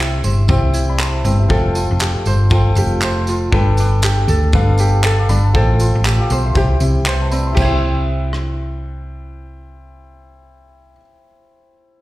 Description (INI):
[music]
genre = acoustic pop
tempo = 119 BPM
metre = 4/4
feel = swing 60% on 16ths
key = C major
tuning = A4 = 445 Hz
[part]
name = ukulele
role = accompaniment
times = 0.0-11.1 s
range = C4 to C5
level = -22 LUFS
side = right 2 dB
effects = plate reverb, slapback echo
[part]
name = warm concert grand piano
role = accompaniment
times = 0.0-12.0 s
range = D4 to E6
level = -23 LUFS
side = left 3 dB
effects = plate reverb, slapback echo
[part]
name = hollow-body short-scale fingered electric bass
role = bass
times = 0.0-11.0 s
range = F1 to D2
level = -15 LUFS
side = equal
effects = none
[part]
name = loose indie drum kit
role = drums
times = 0.2-8.5 s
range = crash cymbal, handclaps, kick drum, rim click, tambourine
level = -20 LUFS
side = equal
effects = none
[part]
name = tambourine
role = percussion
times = 0.5-7.8 s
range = none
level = -34 LUFS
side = right 4 dB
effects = slapback echo
[sound]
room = light reverb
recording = live gig heard through the venue's PA, recital hall reverb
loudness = -13 LUFS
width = side -17 dB against mid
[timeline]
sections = 0.0-7.6 A section; 7.6-11.6 B section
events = none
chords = 0.0 C; 1.5 Fadd9; 3.5 Gadd9; 5.5 Fadd9/A; 6.6 C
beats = 0.49 1.00 | 1.50 2.01 2.51 3.02 | 3.53 4.03 4.54 5.04 | 5.55 6.05 6.56 7.07 | 7.57 8.08 8.59 9.09 | 9.60 10.10 10.61 11.12